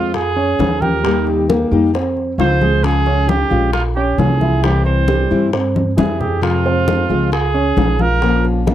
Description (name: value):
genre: latin, Cuban son and guajira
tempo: 134 BPM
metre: 4/4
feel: straight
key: F minor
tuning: A4 = 445 Hz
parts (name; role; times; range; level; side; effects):
- warm trumpet; melody; 0.0-8.5 s; F4 to C5; -19 LUFS; right 4 dB; none
- fingerpicked steel-string acoustic guitar; accompaniment; 0.0-8.7 s; C3 to G4; -20 LUFS; left 5 dB; none
- dark grand piano; arpeggios; 0.0-8.7 s; E3 to G5; -20 LUFS; right 3 dB; none
- upright bass; bass; 0.0-8.7 s; Bb1 to G2; -18 LUFS; right 1 dB; none
- bongos; percussion; 0.1-8.7 s; none; -25 LUFS; left 8 dB; none
- congas; percussion; 0.1-8.7 s; none; -22 LUFS; left 2 dB; none
room: little or no reverb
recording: dry, close 1970s-style studio recording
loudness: -13 LUFS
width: side -11 dB against mid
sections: 0.0-8.7 A section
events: drum fill 5.8-6.4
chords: 0.1 Db/F; 1.0 Eb; 1.9 Fm; 2.8 Db; 3.7 Bbm; 4.6 C; 6.4 Fm; 7.3 Db; 8.2 Bbm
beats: 0.14 0.59 | 1.04 1.49 1.94 2.39 | 2.84 3.29 3.73 4.18 | 4.63 5.08 5.53 5.98 | 6.43 6.88 7.33 7.78 | 8.22 8.67